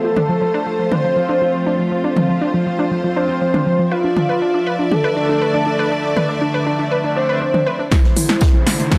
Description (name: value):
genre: melodic techno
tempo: 120 BPM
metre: 4/4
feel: straight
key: unclear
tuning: A4 = 442 Hz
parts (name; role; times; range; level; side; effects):
- fat analog lead; melody; 0.0-9.0 s; E4 to C5; -22 LUFS; equal; sidechain pumping, digital delay
- warm studio string section; sustained chords; 0.0-9.0 s; F3 to E5; -27 LUFS; equal; sidechain pumping
- unison pluck; arpeggios; 0.0-9.0 s; F3 to B4; -24 LUFS; equal; cassette tape, sidechain pumping, digital delay
- techno drum kit; drums; 0.2-9.0 s; hi-hat, snare drum, toms; -22 LUFS; equal; none
- brassy analog pad; stabs; 1.0-7.4 s; D3 to F4; -25 LUFS; equal; chorus, tremolo, sidechain pumping, digital delay
- electronic kick drum; drums; 7.9-9.0 s; none; -16 LUFS; equal; none
- natural country drum kit; drums; 7.9-9.0 s; hi-hat, snare drum, tambourine; -34 LUFS; equal; sidechain pumping on hats, high-pass filter on hats, high-pass filter on snare, sidechain pumping on perc, high-pass filter on perc, high-pass filter on room
- riser; sound effects; 8.2-9.0 s; none; -27 LUFS; equal; none
room: moderate lush hall reverb, RT60 2.2 s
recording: none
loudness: -17 LUFS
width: mono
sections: 0.0-7.9 A section; 7.9-9.0 B section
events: filter sweep on analog synth pad 0.0-7.9; build-up 7.9-9.0; drum fill 7.9-9.0; filter sweep on analog synth lead 7.9-9.0; riser 8.2-9.0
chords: 0.0 F; 3.9 Dmadd9; 7.9 Am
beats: 0.42 0.92 1.42 | 1.92 2.42 2.92 3.42 | 3.92 4.42 4.92 5.42 | 5.92 6.42 6.92 7.42 | 7.92 8.42 8.92